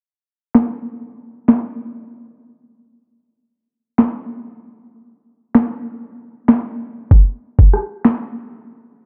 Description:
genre	dancehall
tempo	96 BPM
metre	4/4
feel	straight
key	none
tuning	none
part	island pop drum kit	drums	0.5-8.2 s	finger snaps, kick drum, rim click, snare drum	-15 LUFS	equal	overdrive, vintage 12-bit sampler grit
room	light reverb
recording	low-pass filter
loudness	-16 LUFS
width	mono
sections	0.0-9.1 A section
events	break 8.4-9.1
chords	none

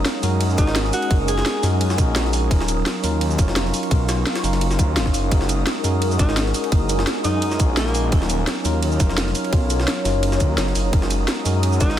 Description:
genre	liquid drum and bass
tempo	171 BPM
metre	4/4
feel	swing 53% on 16ths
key	F# major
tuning	A4 = 440 Hz
part	bell-like tine electric piano	accompaniment	0.0-12.0 s	F#3 to A#4	-25 LUFS	equal	medium stereo tremolo, ping-pong delay
part	glassy FM pad	sustained chords	0.0-12.0 s	F#3 to E#6	-29 LUFS	left 2 dB	ensemble chorus, built-in reverb, phaser, sidechain pumping
part	swelling detuned saw bass	bass	0.0-12.0 s	D#1 to F#2	-21 LUFS	equal	none
part	drum and bass drum kit	drums	0.1-11.9 s	hi-hat, shaker, snare drum	-26 LUFS	right 1 dB	small room ambience
part	jungle sampler-style drum kit	drums	0.1-12.0 s	ride cymbal, snare drum	-30 LUFS	right 1 dB	overdrive, high-pass filter on snare, small room ambience, high-pass filter on cymbals
part	breathy alto saxophone	melody	0.6-1.8, 6.2-8.1, 11.8-12.0 s	A#3 to G#4	-28 LUFS	equal	tape echo
part	electronic kick drum	drums	0.6-11.9 s	none	-18 LUFS	equal	small room ambience
room	digital ambience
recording	dense, heavily limited modern master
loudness	-17 LUFS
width	side -11 dB against mid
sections	0.0-12.0 A section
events	none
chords	0.0 F#69; 2.5 D#m9; 3.9 Bmaj9#11; 5.3 F#69; 8.1 D#m9; 9.5 Bmaj9#11; 10.9 F#69

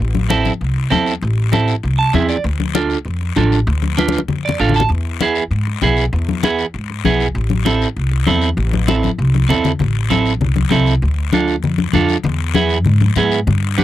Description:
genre	latin, cumbia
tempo	196 BPM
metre	4/4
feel	straight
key	A harmonic minor, A minor from 9.8 s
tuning	A4 = 440 Hz
part	upright bass	bass	0.0-13.8 s	A1 to G#2	-17 LUFS	equal	none
part	congas	percussion	0.0-13.8 s	none	-20 LUFS	left 6 dB	none
part	electric guitar at the edge of break-up	accompaniment	0.3-13.8 s	B3 to A5	-16 LUFS	right 5 dB	none
part	guiro	percussion	0.3-13.8 s	none	-28 LUFS	left 15 dB	none
room	little or no reverb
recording	dry, close 1970s-style studio recording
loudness	-14 LUFS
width	side -13 dB against mid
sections	0.0-9.8 A section; 9.8-13.8 B section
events	clean electric guitar fill 1.8-2.4, 4.3-4.9; drum fill 4.0-4.9, 9.3-9.8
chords	0.0 Am; 2.4 Dm; 4.9 E; 7.3 Am; 11.0 Dm; 12.2 E

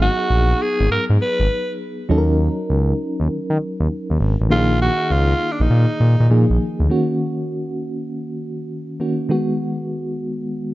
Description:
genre	R&B, new jack swing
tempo	100 BPM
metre	4/4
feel	swing 66% on 16ths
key	Eb minor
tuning	A4 = 440 Hz
part	growling alto saxophone	melody	0.0-6.3 s	D4 to Cb5	-21 LUFS	equal	none
part	FM electric piano with tremolo	accompaniment	0.0-10.7 s	Eb3 to Bb4	-22 LUFS	equal	none
part	smooth synth bass	bass	0.0-6.9 s	Ab1 to Eb3	-16 LUFS	equal	none
room	light reverb, small room ambience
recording	dark, warm production, nothing above 7.5 kHz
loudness	-17 LUFS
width	side -17 dB against mid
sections	0.0-6.9 A section; 6.9-10.7 B section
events	none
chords	0.0 Abm7; 2.1 Ebm7; 4.5 Bb7sus4; 6.9 Ebm7; 9.3 Abm7

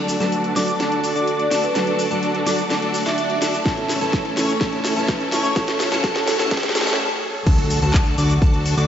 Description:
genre	EDM, festival progressive house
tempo	126 BPM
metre	4/4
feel	straight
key	D major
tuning	A4 = 441 Hz
part	fingerpicked steel-string acoustic guitar	accompaniment	0.0-7.0 s	A2 to B4	-26 LUFS	right 2 dB	sidechain pumping, tape echo
part	rich studio string section	sustained chords	0.0-8.9 s	D3 to D5	-27 LUFS	left 2 dB	sidechain pumping
part	plucky unison lead	arpeggios	0.0-8.9 s	A5 to D6	-26 LUFS	left 1 dB	lush chorus, sidechain pumping, tape echo
part	dense compressed supersaw	riff	0.0-8.9 s	C#4 to D5	-25 LUFS	equal	sidechain pumping, low-pass filter, tape echo
part	riser and impact	sound effects	0.0-8.9 s	none	-32 LUFS	equal	none
part	house drum kit	drums	0.1-8.9 s	crash cymbal, handclaps, hi-hat, shaker, snare drum	-25 LUFS	equal	overdrive, studio reverb
part	vibraphone with medium mallets	melody	1.4-3.4 s	B4 to E5	-27 LUFS	right 2 dB	tape echo
part	electronic kick drum	drums	3.7-8.5 s	none	-19 LUFS	equal	studio reverb
part	fat analog bass	bass	7.5-8.9 s	D2	-20 LUFS	equal	sidechain pumping
room	wet lush hall reverb, RT60 1.9 s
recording	dreamy mix soaked in reverb, high-pass filter, nothing above 7.8 kHz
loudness	-17 LUFS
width	side -9 dB against mid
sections	0.0-7.5 A section; 7.5-8.9 B section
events	build-up 0.0-7.5; drum fill 0.0-7.0; filter sweep on supersaw synth 0.0-7.5; filter sweep on digital synth lead 0.0-7.5; filter sweep 0.0-7.5; break 7.0-7.5; drop 7.5-8.9; impact 7.5-8.9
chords	0.0 D; 3.7 A; 7.5 D

